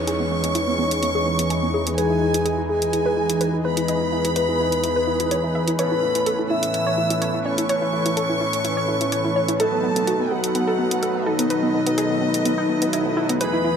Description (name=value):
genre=progressive house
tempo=126 BPM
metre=4/4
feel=straight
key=E major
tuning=A4 = 441 Hz
part: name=soft octave-layered synth lead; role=melody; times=0.0-13.8 s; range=D#4 to E5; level=-24 LUFS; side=left 2 dB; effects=chorus, ping-pong delay
part: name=warm chamber violin section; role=second line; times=0.0-13.8 s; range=D#5 to E6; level=-28 LUFS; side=right 1 dB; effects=dub echo
part: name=lush unison pad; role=sustained chords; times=0.0-13.8 s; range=E2 to D#4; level=-28 LUFS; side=left 1 dB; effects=chorus
part: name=analog pluck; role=arpeggios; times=0.0-13.7 s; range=B3 to E5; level=-26 LUFS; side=equal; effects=chorus, cassette tape, dub echo
part: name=soft supersaw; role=stabs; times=0.0-13.8 s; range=E3 to B4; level=-26 LUFS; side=right 3 dB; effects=low-pass filter, dub echo
part: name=downlifter and swell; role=sound effects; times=0.0-2.0, 12.7-13.4 s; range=none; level=-36 LUFS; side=left 2 dB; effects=none
part: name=electronic hi-hat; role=drums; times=0.1-13.5 s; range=none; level=-27 LUFS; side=equal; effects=none
room=moderate recital hall reverb, RT60 1.4 s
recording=none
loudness=-19 LUFS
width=side -7 dB against mid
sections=0.0-13.8 A section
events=filter sweep on synth arpeggio sound 0.0-13.8; filter sweep on supersaw synth 0.0-13.8; swell 12.7-13.4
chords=0.0 Emaj7; 5.8 Aadd9; 9.6 B7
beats=| 0.07 0.55 1.03 1.50 | 1.98 2.46 2.93 3.41 | 3.88 4.36 4.84 5.31 | 5.79 6.26 6.74 7.22 | 7.69 8.17 8.65 9.12 | 9.60 10.07 10.55 11.03 | 11.50 11.98 12.46 12.93 | 13.41